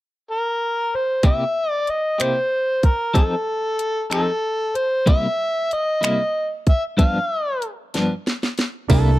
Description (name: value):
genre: slow blues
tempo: 63 BPM (dotted quarters)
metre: 12/8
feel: straight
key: C mixolydian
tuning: A4 = 440 Hz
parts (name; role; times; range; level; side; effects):
- overdriven harmonica; melody; 0.3-9.2 s; A4 to F5; -21 LUFS; equal; slapback echo
- clean electric guitar; accompaniment; 1.2-9.1 s; G2 to A4; -22 LUFS; left 1 dB; tremolo
- garage drum kit; drums; 1.2-9.0 s; finger snaps, hi-hat, kick drum, ride cymbal, snare drum; -17 LUFS; equal; none
- clear baby grand piano; accompaniment; 8.9-9.1 s; D4 to Bb4; -24 LUFS; right 12 dB; none
- vintage muted fingered electric bass; bass; 8.9-9.2 s; C2; -15 LUFS; equal; none
room: digital ambience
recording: dry, close 1970s-style studio recording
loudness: -18 LUFS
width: side -17 dB against mid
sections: 0.0-1.2 A section; 1.2-8.9 B section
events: drum fill 7.9-8.9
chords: 0.0 N.C.; 1.2 C7; 3.2 F7; 5.1 C7; 7.0 G7